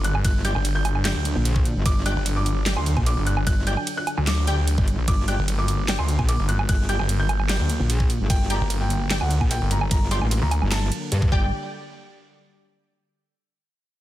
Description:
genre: heavy wobble dubstep.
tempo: 149 BPM.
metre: 4/4.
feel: half-time.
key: G harmonic minor.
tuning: A4 = 440 Hz.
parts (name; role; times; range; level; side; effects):
felt-muted upright piano; melody; 0.0-11.5 s; F#5 to G6; -31 LUFS; equal; digital delay.
supersaw pad; sustained chords; 0.0-11.5 s; D3 to D5; -32 LUFS; equal; sidechain pumping, low-pass filter.
snarling distorted saw bass; bass; 0.0-10.6 s; G1 to D2; -22 LUFS; equal; distortion, overdrive.
dubstep drum kit; drums; 0.0-11.2 s; handclaps, hi-hat, ride cymbal, snare drum, woodblock; -29 LUFS; right 2 dB; small room ambience.
metallic wobble bass; bass; 0.2-11.5 s; G1 to G2; -23 LUFS; equal; distortion, chorus, overdrive.
electronic kick drum; drums; 0.2-11.4 s; none; -22 LUFS; equal; small room ambience.
orchestra-hit-like synth stab; stabs; 0.4-11.5 s; G4 to G5; -32 LUFS; left 2 dB; built-in reverb, vintage 12-bit sampler grit, digital delay.
room: little or no reverb.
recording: dense, heavily limited modern master.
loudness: -20 LUFS.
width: side -14 dB against mid.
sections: 0.0-11.5 A section; 11.5-13.1 B section.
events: drop 0.0-11.5.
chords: 0.0 G5; 11.5 N.C..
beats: | 0.24 0.65 1.05 1.45 | 1.86 2.26 2.66 3.06 | 3.47 3.87 4.27 4.67 | 5.08 5.48 5.88 6.29 | 6.69 7.09 7.49 7.90 | 8.30 8.70 9.11 9.51 | 9.91 10.31 10.71 11.12.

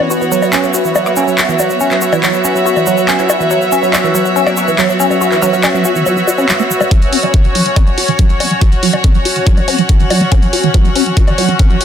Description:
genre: psychedelic trance.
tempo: 141 BPM.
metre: 4/4.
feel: straight.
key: unclear.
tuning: A4 = 440 Hz.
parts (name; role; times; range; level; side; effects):
bubbling stepped-filter texture; sustained chords; 0.0-11.8 s; B3 to E5; -18 LUFS; right 1 dB; chorus, built-in reverb, sidechain pumping.
woody wave-folded pluck; riff; 0.0-11.8 s; E3 to F#4; -15 LUFS; moving between left 1 dB and right 6 dB; chorus, auto-pan, sidechain pumping, digital delay.
techno drum kit; drums; 0.0-11.8 s; bongos, handclaps, hi-hat; -17 LUFS; left 2 dB; none.
bright chamber string section; texture; 0.0-11.8 s; F#4 to F#5; -18 LUFS; left 1 dB; sidechain pumping.
egg shaker; percussion; 0.1-6.9 s; none; -23 LUFS; right 2 dB; none.
metallic wobble bass; second line; 1.1-5.6 s; A#3 to E4; -27 LUFS; left 3 dB; none.
electronic kick drum; drums; 6.9-11.7 s; none; -10 LUFS; equal; none.
room: light reverb.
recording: dense, heavily limited modern master.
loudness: -10 LUFS.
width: side -9 dB against mid.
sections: 0.0-6.9 A section; 6.9-11.8 B section.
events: filter sweep on synth texture 0.0-6.9; build-up 6.9-11.8; filter sweep on synth arpeggio sound 6.9-11.8.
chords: 0.0 F#5.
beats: | 0.10 0.53 0.95 1.38 | 1.81 2.23 2.66 3.08 | 3.51 3.93 4.36 4.79 | 5.21 5.64 6.06 6.49 | 6.91 7.34 7.76 8.19 | 8.62 9.04 9.47 9.89 | 10.32 10.74 11.17 11.59.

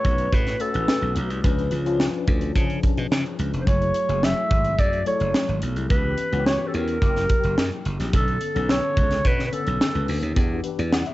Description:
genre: polished 1980s jazz-funk pop.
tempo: 108 BPM.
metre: 4/4.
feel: straight.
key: unclear.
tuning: A4 = 440 Hz.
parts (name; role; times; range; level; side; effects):
breathy clarinet; melody; 0.0-10.1 s; A4 to E5; -25 LUFS; right 1 dB; cassette tape.
tine electric piano; accompaniment; 0.0-11.1 s; D3 to F#5; -29 LUFS; left 7 dB; overdrive, medium stereo tremolo, ensemble chorus, cassette tape.
glassy slap bass; bass; 0.0-11.0 s; E#1 to C#3; -25 LUFS; right 1 dB; none.
crisp fusion drum kit; drums; 0.0-11.1 s; hi-hat, kick drum, snare drum; -23 LUFS; equal; cassette tape.
room: light reverb, studio ambience.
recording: home recording on cassette, nothing above 7.8 kHz.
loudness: -20 LUFS.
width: side -17 dB against mid.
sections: 0.0-11.1 A section.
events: none.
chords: 0.0 A69; 1.4 C#7b9; 3.7 F#m9; 5.9 C#m7b5; 7.0 F#7b9; 8.1 Bm9; 10.4 Em7.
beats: 0.32 0.88 | 1.44 2.00 2.56 3.11 | 3.67 4.23 4.79 5.35 | 5.90 6.46 7.02 7.58 | 8.13 8.69 9.25 9.81 | 10.37 10.92.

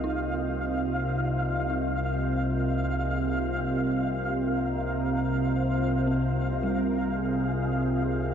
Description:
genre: dark ambient drone.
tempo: 55 BPM.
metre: 4/4.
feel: straight.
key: C minor.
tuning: A4 = 441 Hz.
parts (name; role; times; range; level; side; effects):
mellow horn-like synth lead; melody; 0.0-8.3 s; G4 to C5; -41 LUFS; equal; phaser, ensemble chorus, shimmer reverb, ping-pong delay.
deep dark ambient pad; sustained chords; 0.0-8.3 s; C4 to Eb5; -29 LUFS; right 2 dB; chorus, built-in reverb, shimmer reverb.
dark detuned synth bell; arpeggios; 0.0-8.3 s; G3 to Eb4; -36 LUFS; equal; chorus, shimmer reverb, ping-pong delay.
organ-like drone; drone; 0.0-8.3 s; C2 to C3; -29 LUFS; left 1 dB; ensemble chorus, built-in reverb.
flickering grainy texture; texture; 0.0-8.3 s; F5; -33 LUFS; equal; built-in reverb, shimmer reverb.
room: wet cathedral reverb, RT60 6.0 s.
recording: in a vast, echoing space.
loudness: -25 LUFS.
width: side -8 dB against mid.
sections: 0.0-8.3 A section.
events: fade-in on soft synth lead 0.0-8.3.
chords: 0.0 Cm.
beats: | 0.05 1.15 2.25 3.35 | 4.44 5.53 6.62 7.73.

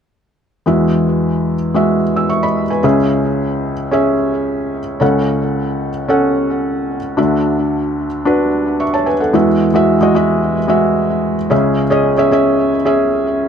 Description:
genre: pop.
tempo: 111 BPM.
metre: 4/4.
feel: straight.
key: E major.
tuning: A4 = 440 Hz.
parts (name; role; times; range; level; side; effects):
felt-muted upright piano; solo; 0.7-13.5 s; C#2 to E6; -13 LUFS; equal; digital delay.
room: light reverb.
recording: dark, warm production.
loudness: -13 LUFS.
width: side -8 dB against mid.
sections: 0.7-9.3 A section; 9.3-13.5 B section.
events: none.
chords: 0.7 Eadd9; 2.8 C#m; 5.0 F#m/C#; 7.2 Dadd9; 9.3 Eadd9; 11.5 C#m.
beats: | 0.67 1.22 1.76 2.30 | 2.84 3.38 3.93 4.47 | 5.01 5.55 6.09 6.63 | 7.18 7.72 8.26 8.80 | 9.34 9.88 10.43 10.97 | 11.51 12.05 12.59 13.13.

